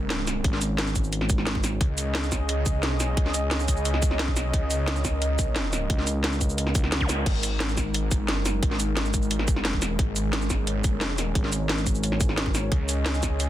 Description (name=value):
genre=dark technical drum and bass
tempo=176 BPM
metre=4/4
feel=straight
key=unclear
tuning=A4 = 441 Hz
part: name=dark analog pad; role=sustained chords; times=0.0-13.5 s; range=G#3 to D#5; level=-32 LUFS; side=equal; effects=chorus, sidechain pumping
part: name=snarling distorted saw bass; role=bass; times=0.0-13.5 s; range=G#1 to C#2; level=-27 LUFS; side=equal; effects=distortion, overdrive, sidechain pumping
part: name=drum and bass drum kit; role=drums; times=0.1-13.5 s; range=crash cymbal, hi-hat, shaker, snare drum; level=-28 LUFS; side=equal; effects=none
part: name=growling FM bass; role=bass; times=0.4-1.8, 5.9-7.2, 11.4-12.7 s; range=G#1 to C#2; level=-27 LUFS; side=equal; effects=none
part: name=electronic kick drum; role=drums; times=0.4-13.3 s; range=none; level=-25 LUFS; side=equal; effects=none
part: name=zap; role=sound effects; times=7.0-7.1 s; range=none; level=-32 LUFS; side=equal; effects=none
room=little or no reverb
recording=dense, heavily limited modern master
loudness=-23 LUFS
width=side -13 dB against mid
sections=0.0-13.5 A section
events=none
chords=0.0 G#5; 1.8 C#5; 7.3 G#5; 12.7 C#5